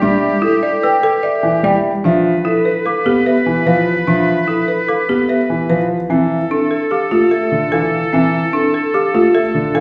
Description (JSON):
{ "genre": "classical, minimalist pattern music", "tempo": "148 BPM", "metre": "5/4", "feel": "straight", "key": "G mixolydian", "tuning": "A4 = 443 Hz", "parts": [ { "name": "vibraphone with soft mallets", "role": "melody", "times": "0.0-9.8 s", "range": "A4 to G5", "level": "-22 LUFS", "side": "equal", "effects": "none" }, { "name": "bright oboe", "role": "second line", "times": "0.0-9.8 s", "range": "G4 to B4", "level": "-24 LUFS", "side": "equal", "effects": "none" }, { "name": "clear concert grand piano", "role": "accompaniment", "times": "0.0-9.8 s", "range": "D3 to B3", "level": "-20 LUFS", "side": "equal", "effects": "none" }, { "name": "folk marimba with hard mallets", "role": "arpeggios", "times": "0.0-9.8 s", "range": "C4 to D5", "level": "-20 LUFS", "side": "equal", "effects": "none" }, { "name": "small celesta", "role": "arpeggios", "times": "0.8-9.2 s", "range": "D6 to E6", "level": "-27 LUFS", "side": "equal", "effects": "none" } ], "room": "wet recital hall reverb, RT60 1.4 s", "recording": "heard from further back in the room, nothing above 10.9 kHz", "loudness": "-15 LUFS", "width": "mono", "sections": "0.0-9.8 A section", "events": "none", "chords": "0.0 Em7; 2.0 G9; 6.1 Dm9" }